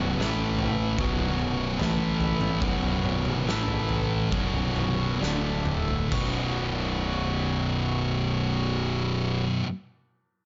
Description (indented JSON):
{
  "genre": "stoner and doom metal",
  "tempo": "65-75 BPM",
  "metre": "4/4",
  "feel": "straight",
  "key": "B minor",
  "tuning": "A4 = 440 Hz",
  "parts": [
    { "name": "hand-pumped harmonium", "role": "sustained chords", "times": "0.0-9.5 s", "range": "A3 to E5", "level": "-38 LUFS", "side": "equal", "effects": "none" },
    { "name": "thick fuzz guitar", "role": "riff", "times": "0.0-9.6 s", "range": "B1 to A3", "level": "-32 LUFS", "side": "equal", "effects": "distortion" },
    { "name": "thick fuzz guitar", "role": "riff", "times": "0.0-9.7 s", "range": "B1 to A3", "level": "-32 LUFS", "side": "equal", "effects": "distortion" },
    { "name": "fuzz fingered electric bass", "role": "bass", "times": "0.0-9.5 s", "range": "B0 to A1", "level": "-34 LUFS", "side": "equal", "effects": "overdrive" },
    { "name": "oversized low-tuned drum kit", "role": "drums", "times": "0.2-6.3 s", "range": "crash cymbal, kick drum, snare drum, toms", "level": "-34 LUFS", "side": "equal", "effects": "none" }
  ],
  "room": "light reverb",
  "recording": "nothing above 7.5 kHz",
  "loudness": "-27 LUFS",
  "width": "mono",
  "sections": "0.0-6.1 A section; 6.1-9.8 B section",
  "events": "slowing down 0.0-6.1; drum fill 5.2-6.1",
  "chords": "0.2 A5; 1.0 B5; 1.8 A5; 2.6 B5; 3.5 A5; 4.3 B5; 5.2 D5; 6.1 B5"
}